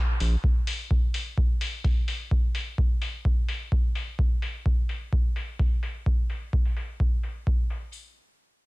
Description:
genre	acid house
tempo	128 BPM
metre	4/4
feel	straight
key	none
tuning	none
part	electronic hi-hat	drums	0.2-7.8 s	none	-36 LUFS	left 2 dB	low-pass filter on hats, low-pass filter on snare, low-pass filter on room
part	electronic kick drum	drums	0.4-7.6 s	none	-24 LUFS	equal	none
room	little or no reverb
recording	dense, heavily limited modern master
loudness	-24 LUFS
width	side -22 dB against mid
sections	0.0-7.9 A section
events	none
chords	none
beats	| 0.44 0.91 1.38 1.84 | 2.31 2.78 3.25 3.72 | 4.19 4.66 5.13 5.59 | 6.06 6.53 7.00 7.47

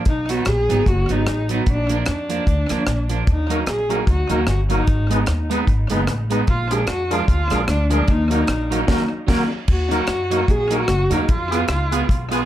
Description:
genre	ska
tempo	150 BPM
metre	4/4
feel	swing 57% on 8ths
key	Eb harmonic minor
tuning	A4 = 439 Hz
part	electric guitar at the edge of break-up	accompaniment	0.0-12.4 s	F3 to Ab4	-25 LUFS	right 5 dB	spring reverb
part	dark viola	melody	0.1-12.1 s	D4 to Ab4	-23 LUFS	equal	tape echo
part	upright bass	bass	0.1-12.4 s	F#1 to Gb2	-22 LUFS	equal	none
part	deep reggae drum kit	drums	0.1-12.4 s	crash cymbal, hi-hat, kick drum, rim click, snare drum	-22 LUFS	equal	tape echo
part	tonewheel organ	stabs	3.5-12.4 s	D4 to Cb5	-26 LUFS	left 2 dB	overdrive, fast rotary speaker
room	moderate small room reverb, RT60 0.6 s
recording	none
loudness	-17 LUFS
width	side -12 dB against mid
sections	0.0-9.7 A section; 9.7-12.5 B section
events	band accent 8.9-9.7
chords	0.1 B; 1.7 Bb; 3.3 Ebm; 4.9 Abm; 6.5 Bb7; 8.1 Ebm; 11.3 Fdim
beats	| 0.07 0.47 0.87 1.27 | 1.67 2.07 2.47 2.87 | 3.27 3.67 4.08 4.48 | 4.88 5.28 5.68 6.08 | 6.48 6.88 7.28 7.68 | 8.08 8.48 8.88 9.28 | 9.68 10.08 10.48 10.88 | 11.28 11.68 12.08

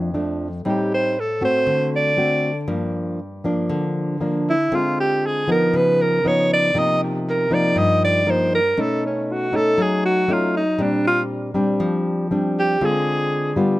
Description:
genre	bossa nova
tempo	118 BPM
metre	4/4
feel	straight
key	C minor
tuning	A4 = 440 Hz
part	nylon-string guitar	accompaniment	0.0-13.8 s	F2 to F#4	-21 LUFS	left 1 dB	none
part	breathy alto saxophone	melody	0.7-13.6 s	C#4 to Eb5	-19 LUFS	right 1 dB	none
room	little or no reverb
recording	close, detailed microphones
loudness	-17 LUFS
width	side -17 dB against mid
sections	0.0-13.8 A section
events	alto saxophone solo 0.0-13.8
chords	0.0 Bbmaj7 (rootless); 0.7 Am7b5; 1.7 D7; 2.7 Gm7; 4.7 Dm7b5; 5.7 Db9; 6.7 Cm7; 8.8 B9; 10.8 Bb69; 12.8 Dm7b5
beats	0.15 | 0.65 1.16 1.67 2.18 | 2.69 3.19 3.70 4.21 | 4.71 5.22 5.73 6.23 | 6.74 7.25 7.75 8.26 | 8.77 9.27 9.78 10.28 | 10.79 11.29 11.80 12.31 | 12.81 13.32

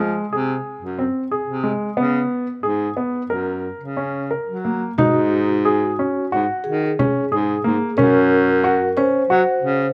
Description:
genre	contemporary instrumental, chamber music in an uneven meter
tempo	181 BPM (eighths)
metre	9/8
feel	straight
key	Ab mixolydian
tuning	A4 = 440 Hz
part	warm grand piano	arpeggios	0.0-9.8 s	Ab3 to Bb4	-23 LUFS	equal	none
part	mellow baritone saxophone	bass	0.0-9.9 s	Gb2 to Gb3	-24 LUFS	equal	none
part	vibraphone with soft mallets	second line	5.0-9.9 s	Gb4 to C5	-23 LUFS	equal	none
part	frame drum	percussion	5.0-9.8 s	none	-28 LUFS	equal	none
room	light reverb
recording	close, detailed microphones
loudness	-20 LUFS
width	mono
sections	0.0-5.0 A section; 5.0-9.9 B section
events	none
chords	0.0 Ab7; 2.0 Db5; 3.3 Gb; 5.0 Ab7sus4; 8.0 Gb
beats	0.32 0.65 0.98 1.31 1.64 | 1.97 2.30 2.64 2.97 3.30 3.64 3.98 4.32 4.66 | 4.99 5.33 5.66 6.00 6.33 6.66 6.99 7.32 7.65 | 7.98 8.31 8.64 8.97 9.29 9.62

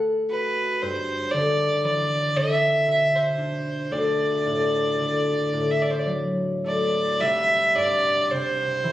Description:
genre	celtic folk, Celtic slow air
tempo	52-58 BPM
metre	3/4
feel	rubato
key	D mixolydian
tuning	A4 = 440 Hz
part	concert harp	accompaniment	0.0-8.9 s	C2 to A4	-25 LUFS	left 1 dB	none
part	warm fiddle	melody	0.3-8.9 s	B4 to E5	-22 LUFS	right 1 dB	none
room	moderate recital hall reverb, RT60 1.3 s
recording	recorded on a phone in the room, studio reverb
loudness	-20 LUFS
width	side -13 dB against mid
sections	0.0-7.2 A section; 7.2-8.9 B section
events	none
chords	0.0 D; 0.8 G6; 3.9 D; 7.2 C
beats	| 0.83 1.87 2.89 | 3.92 4.98 6.09 | 7.21 8.29

